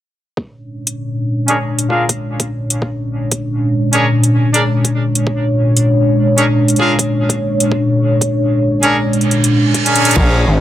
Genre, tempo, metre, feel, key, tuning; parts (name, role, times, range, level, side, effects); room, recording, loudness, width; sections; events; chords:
glitch hop; 98 BPM; 4/4; swing 62% on 16ths; A4 = 441 Hz
dark analog pad; sustained chords; 0.8-10.6 s; Bb2 to C#5; -14 LUFS; equal; chorus, phaser, sidechain pumping
electronic kick drum; drums; 0.4-10.3 s; -20 LUFS; equal; high-pass filter on kick
drum and bass drum kit; drums; 0.9-10.3 s; crash cymbal, hi-hat; -17 LUFS; equal
brilliant horn section; stabs; 1.5-10.5 s; C#4 to F5; -18 LUFS; equal; vintage 12-bit sampler grit, sidechain pumping, low-pass filter, dub echo
reverse cymbal; sound effects; 9.2-10.2 s; -20 LUFS; right 5 dB
gritty driven synth bass; bass; 10.2-10.6 s; Ab1 to Bb1; -12 LUFS; equal
light reverb; -12 LUFS; side -12 dB against mid
0.4-10.2 A section
reverse cymbal 9.2-10.2; drum fill 9.9-10.2
0.4 Bb7#9